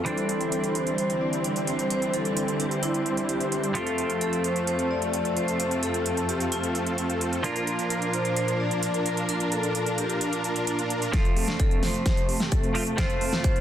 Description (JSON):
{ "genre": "EDM, festival progressive house", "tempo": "130 BPM", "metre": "4/4", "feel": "straight", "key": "F major", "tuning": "A4 = 440 Hz", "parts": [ { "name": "vibraphone with hard mallets", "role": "melody", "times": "0.0-13.6 s", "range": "E4 to D5", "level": "-30 LUFS", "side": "left 2 dB", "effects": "vintage 12-bit sampler grit, dub echo" }, { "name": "clean electric guitar", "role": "accompaniment", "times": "0.0-13.6 s", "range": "E3 to F4", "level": "-32 LUFS", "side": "right 2 dB", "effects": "analog chorus, sidechain pumping" }, { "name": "rich symphonic string section", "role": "sustained chords", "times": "0.0-13.6 s", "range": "F2 to D4", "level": "-32 LUFS", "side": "left 1 dB", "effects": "sidechain pumping, low-pass filter" }, { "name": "supersaw chords", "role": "riff", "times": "0.0-13.6 s", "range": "G3 to C5", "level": "-29 LUFS", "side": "right 1 dB", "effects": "sidechain pumping, low-pass filter" }, { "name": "big-room dance drum kit", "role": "drums", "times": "0.1-13.6 s", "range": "hi-hat, snare drum", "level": "-31 LUFS", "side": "right 2 dB", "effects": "none" }, { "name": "electronic kick drum", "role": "drums", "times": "11.1-13.5 s", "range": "none", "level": "-24 LUFS", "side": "equal", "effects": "none" } ], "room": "light reverb", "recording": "dense, heavily limited modern master", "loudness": "-24 LUFS", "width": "side -10 dB against mid", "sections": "0.0-11.1 A section; 11.1-13.6 B section", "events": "filter sweep on supersaw synth 0.0-11.1, 11.1-13.6; build-up 11.1-13.6; drum fill 11.1-13.6; filter sweep on string section 11.1-13.6", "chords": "0.1 Cadd9; 3.8 F; 7.4 Bb; 11.1 F" }